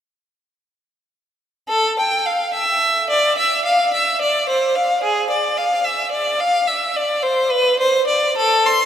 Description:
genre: classical, baroque-style suite movement for unaccompanied violin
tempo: 72 BPM (dotted quarters)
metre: 12/8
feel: rubato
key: unclear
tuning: A4 = 443 Hz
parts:
  - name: clear violin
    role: solo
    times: 1.7-8.9 s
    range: G#4 to C6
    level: -15 LUFS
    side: equal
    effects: none
room: wet cathedral reverb, RT60 5.1 s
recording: in a vast, echoing space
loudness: -16 LUFS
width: side -9 dB against mid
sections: 1.7-8.9 A section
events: none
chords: none

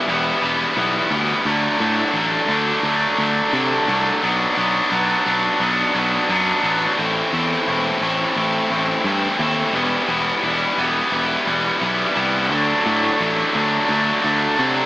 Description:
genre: post-rock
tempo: 87 BPM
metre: 4/4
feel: straight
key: E minor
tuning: A4 = 440 Hz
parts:
  - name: distorted electric guitar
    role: riff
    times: 0.0-14.9 s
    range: A2 to E4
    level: -17 LUFS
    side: equal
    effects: overdrive
  - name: fuzz fingered electric bass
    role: bass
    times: 0.1-14.8 s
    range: E1 to C3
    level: -26 LUFS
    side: equal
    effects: overdrive
room: wet plate reverb, RT60 2.7 s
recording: dreamy mix soaked in reverb, small speaker sound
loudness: -16 LUFS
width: side -17 dB against mid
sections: 0.0-14.9 A section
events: none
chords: 0.0 Em; 1.5 D; 4.2 Bm; 7.0 Am; 9.7 Em; 12.5 D

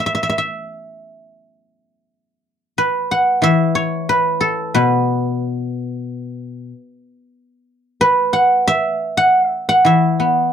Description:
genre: chinese traditional, Chinese solo plucked strings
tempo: 90 BPM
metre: 4/4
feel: uneven beats, rubato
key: E zhi mode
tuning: A4 = 439 Hz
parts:
  - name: guzheng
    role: solo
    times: 0.0-10.5 s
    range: B2 to F#5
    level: -15 LUFS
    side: equal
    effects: none
room: light reverb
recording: dark, warm production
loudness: -14 LUFS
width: side -8 dB against mid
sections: 0.0-2.1 A section; 2.1-10.5 B section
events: none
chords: none

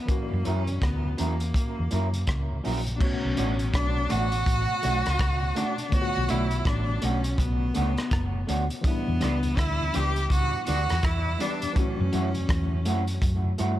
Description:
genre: lovers rock reggae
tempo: 82 BPM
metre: 4/4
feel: swing 62% on 16ths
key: B minor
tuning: A4 = 440 Hz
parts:
  - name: rich cello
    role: melody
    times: 0.0-13.2 s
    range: A#3 to G4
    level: -30 LUFS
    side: equal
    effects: tape echo
  - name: tine electric piano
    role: accompaniment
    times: 0.0-13.8 s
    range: B2 to C#5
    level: -35 LUFS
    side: left 2 dB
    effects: overdrive, fast stereo tremolo
  - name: crunchy breakbeat drum kit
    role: drums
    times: 0.1-13.8 s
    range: crash cymbal, hi-hat, kick drum, rim click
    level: -29 LUFS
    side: equal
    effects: none
  - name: mellow tonewheel organ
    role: accompaniment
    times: 0.3-13.7 s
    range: E2 to E4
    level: -38 LUFS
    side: left 1 dB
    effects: none
  - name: hollow-body short-scale fingered electric bass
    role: bass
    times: 0.3-13.8 s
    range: F#1 to G2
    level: -27 LUFS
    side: equal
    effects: none
  - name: electric guitar through a small old amp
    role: stabs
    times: 0.4-13.7 s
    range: F#3 to D5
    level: -33 LUFS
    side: right 3 dB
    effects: wide subtle chorus, tape echo
room: little or no reverb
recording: none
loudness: -23 LUFS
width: side -13 dB against mid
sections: 0.0-3.0 A section; 3.0-13.8 B section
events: none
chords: 0.1 F#7; 3.0 Bm9; 8.8 Em7; 11.8 F#m7

